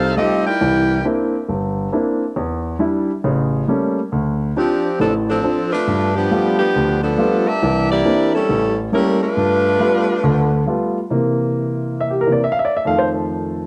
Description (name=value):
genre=jazz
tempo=137 BPM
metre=4/4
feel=swing 66% on 8ths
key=C major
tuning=A4 = 439 Hz
part: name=bright saxophone section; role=melody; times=0.0-1.0, 4.6-10.6 s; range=F3 to G5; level=-20 LUFS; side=equal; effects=cassette tape
part: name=warm grand piano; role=accompaniment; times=0.0-13.7 s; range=G1 to F5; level=-20 LUFS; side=equal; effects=cassette tape
room=moderate spring reverb, RT60 1.6 s, small room ambience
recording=home recording on cassette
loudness=-18 LUFS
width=mono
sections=0.0-11.1 A section; 11.1-13.7 B section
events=grand piano solo 11.1-13.7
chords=0.0 F9; 0.6 C9; 2.4 Em7; 3.2 A7b9; 4.1 Dm7; 5.9 G9; 7.6 C9; 8.5 A7b9; 9.4 G9; 11.1 C7; 12.8 F7